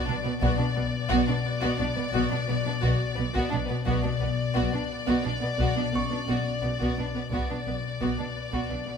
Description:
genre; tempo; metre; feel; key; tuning
cinematic, suspense film score; 87 BPM; 5/4; straight; B minor; A4 = 440 Hz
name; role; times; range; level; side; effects
warm chamber violin section; melody; 0.0-9.0 s; D5; -32 LUFS; left 5 dB; none
warm chamber violin section; second line; 0.0-8.9 s; B3 to F#4; -34 LUFS; left 2 dB; none
warm chamber viola section; accompaniment; 0.0-8.9 s; B3; -31 LUFS; right 3 dB; none
concert harp; riff; 0.0-9.0 s; B2 to B3; -32 LUFS; left 8 dB; none
dark chamber double bass section; bass; 0.1-8.8 s; B1; -34 LUFS; right 3 dB; none
warm chamber cello section; bass; 0.1-8.9 s; B2; -34 LUFS; right 4 dB; none
taiko ensemble; drums; 0.4-9.0 s; none; -35 LUFS; right 1 dB; none
music box; texture; 0.4-8.0 s; C#4 to C#6; -39 LUFS; equal; none
room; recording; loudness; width
moderate concert hall reverb, RT60 2.2 s; close, detailed microphones; -24 LUFS; side -6 dB against mid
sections
0.0-9.0 A section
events
none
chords
0.0 Bm

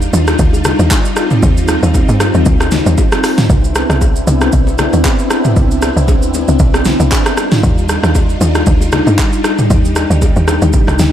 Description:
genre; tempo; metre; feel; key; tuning
amapiano; 116 BPM; 4/4; swing 55% on 16ths; unclear; A4 = 444 Hz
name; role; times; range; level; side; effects
string machine, violas; sustained chords; 0.0-11.1 s; G3 to G4; -16 LUFS; left 1 dB; ensemble chorus
tight log drum bass; bass; 0.0-11.1 s; B1 to G2; -13 LUFS; equal; none
deep house drum kit; drums; 0.0-11.1 s; handclaps, hi-hat, kick drum, rim click, shaker, snare drum, toms; -13 LUFS; equal; none
bongos and congas; percussion; 0.1-11.1 s; none; -23 LUFS; left 5 dB; none
room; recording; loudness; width
moderate lush hall reverb, RT60 1.6 s; dreamy mix soaked in reverb; -9 LUFS; side -10 dB against mid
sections
0.0-11.1 A section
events
none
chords
0.0 Ebmaj9; 3.5 Cmaj9; 7.4 Ebmaj9

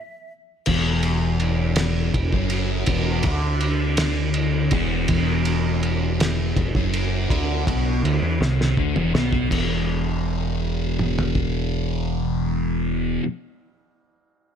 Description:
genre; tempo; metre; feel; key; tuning
psychedelic rock; 54 BPM (dotted quarters); 6/8; straight; unclear; A4 = 440 Hz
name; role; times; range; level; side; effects
thick fuzz guitar; riff; 0.7-13.2 s; E2 to E3; -23 LUFS; left 1 dB; distortion, phaser
deep dub picked electric bass; bass; 0.7-13.2 s; E1 to E2; -24 LUFS; equal; none
cloth-damped thuddy drum kit; drums; 0.7-11.5 s; crash cymbal, kick drum, ride cymbal, snare drum, toms; -24 LUFS; right 1 dB; none
room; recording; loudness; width
small room ambience; none; -20 LUFS; side -8 dB against mid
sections
0.7-9.5 A section; 9.5-11.7 B section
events
stop 0.0-0.7; drum fill 8.4-9.5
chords
0.0 N.C.; 0.7 E5

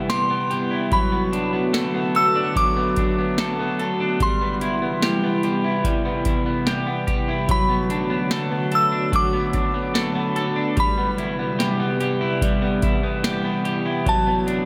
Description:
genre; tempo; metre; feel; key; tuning
dream pop; 73 BPM; 4/4; straight; B phrygian; A4 = 443 Hz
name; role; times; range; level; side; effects
glassy synth bell; melody; 0.0-14.7 s; G5 to E6; -27 LUFS; equal; chorus, delay
warbly tape-like pad; sustained chords; 0.0-14.7 s; C3 to F#4; -28 LUFS; equal; chorus, built-in reverb
electric guitar at the edge of break-up; arpeggios; 0.0-14.7 s; F#3 to A4; -26 LUFS; equal; lush chorus, delay
booming analog drum machine; drums; 0.1-14.7 s; hi-hat, kick drum, snare drum; -27 LUFS; equal; none
room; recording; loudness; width
moderate huge ambient reverb, RT60 4.3 s; none; -21 LUFS; mono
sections
0.0-14.7 A section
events
none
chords
0.0 Cmaj7; 0.9 Bm7; 4.2 Cmaj7; 7.5 Bm7; 10.8 Cmaj7; 14.1 Bm7

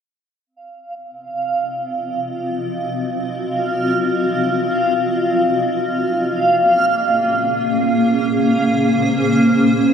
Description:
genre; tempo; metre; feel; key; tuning
ambient; free time; none; none; Eb dorian; A4 = 436 Hz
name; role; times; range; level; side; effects
granular cloud pad; sustained chords; 1.9-9.9 s; Bb3 to Eb5; -17 LUFS; equal; built-in reverb
backwards swelling texture; texture; 0.9-9.9 s; F5; -20 LUFS; right 1 dB; built-in reverb
room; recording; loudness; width
moderate plate reverb, RT60 2.7 s; none; -15 LUFS; side -7 dB against mid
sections
0.5-9.9 A section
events
fade-in on ambient pad 0.5-9.9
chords
0.5 Ebm69; 5.9 Bbm9

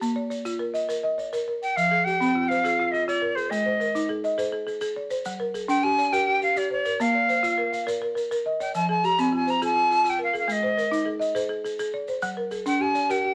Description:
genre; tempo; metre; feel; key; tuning
southern african traditional, mbira-style interlocking cycle; 138 BPM (dotted quarters); 12/8; straight; F equiheptatonic; A4 = 439 Hz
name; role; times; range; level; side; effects
folk marimba with medium hard mallets; arpeggios; 0.0-13.3 s; F3 to F5; -28 LUFS; equal; none
maracas; percussion; 0.0-13.2 s; none; -44 LUFS; equal; none
bright silver concert flute; melody; 1.6-13.3 s; C5 to Bb5; -25 LUFS; equal; none
room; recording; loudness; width
moderate studio reverb, RT60 0.8 s; none; -25 LUFS; mono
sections
0.0-1.8 A section; 1.8-13.3 B section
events
none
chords
0.0 Bb; 1.8 Fm; 3.5 Ab; 5.3 Gm; 7.0 Bb; 8.7 Fm; 10.5 Ab; 12.2 Gm

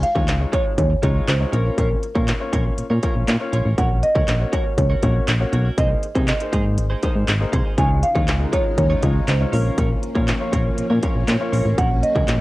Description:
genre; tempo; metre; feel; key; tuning
dance-pop; 120 BPM; 4/4; straight; Db major; A4 = 436 Hz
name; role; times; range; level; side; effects
marimba with soft mallets; melody; 0.0-12.4 s; Bb4 to Ab5; -24 LUFS; right 1 dB; cassette tape, tape echo
warm concert grand piano; accompaniment; 0.0-12.3 s; Ab3 to F5; -29 LUFS; left 3 dB; sidechain pumping
direct-recorded clean electric guitar; riff; 0.0-12.3 s; Ab3 to Db5; -31 LUFS; right 3 dB; lush chorus
solid FM bass; bass; 0.0-12.4 s; Ab1 to C3; -20 LUFS; equal; sidechain pumping
industrial drum kit; drums; 0.0-12.4 s; handclaps, hi-hat, kick drum, snare drum; -22 LUFS; equal; distortion, cassette tape
string machine, full ensemble; sustained chords; 7.8-12.4 s; Db3 to F4; -28 LUFS; equal; ensemble chorus, sidechain pumping
riser; sound effects; 12.2-12.4 s; none; -37 LUFS; right 2 dB; none
room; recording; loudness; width
light reverb; home recording on cassette; -17 LUFS; side -18 dB against mid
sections
0.0-12.4 A section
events
grand piano fill 3.0-3.8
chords
0.0 Dbadd9; 1.5 Bbm; 3.8 Gb/Bb; 5.8 Abadd9/C; 7.8 Dbadd9; 9.5 Bbm; 11.8 Gb/Bb

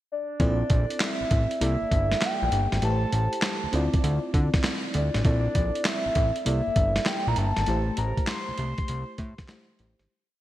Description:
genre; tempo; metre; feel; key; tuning
R&B, new jack swing; 99 BPM; 4/4; swing 67% on 16ths; unclear; A4 = 440 Hz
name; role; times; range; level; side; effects
soft octave-layered synth lead; melody; 0.1-9.5 s; D5 to C6; -29 LUFS; equal; chorus, phaser
FM electric piano with auto-pan; accompaniment; 0.4-10.1 s; A3 to D5; -32 LUFS; equal; none
fat analog bass; bass; 0.4-10.1 s; G1 to D3; -26 LUFS; equal; none
boom bap sampler-style drum kit; drums; 0.4-10.1 s; handclaps, hi-hat, kick drum, snare drum; -27 LUFS; equal; vintage 12-bit sampler grit, gated reverb
room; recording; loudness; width
light reverb; bright 1980s-style digital production; -23 LUFS; side -14 dB against mid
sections
0.0-0.4 pickup bar; 0.4-10.1 verse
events
fade-out 7.7-10.1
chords
0.4 Bbmaj9#11; 1.6 C13; 2.8 Am7; 3.7 Dm9; 5.2 Bbmaj9#11; 6.5 C13; 7.7 Am7

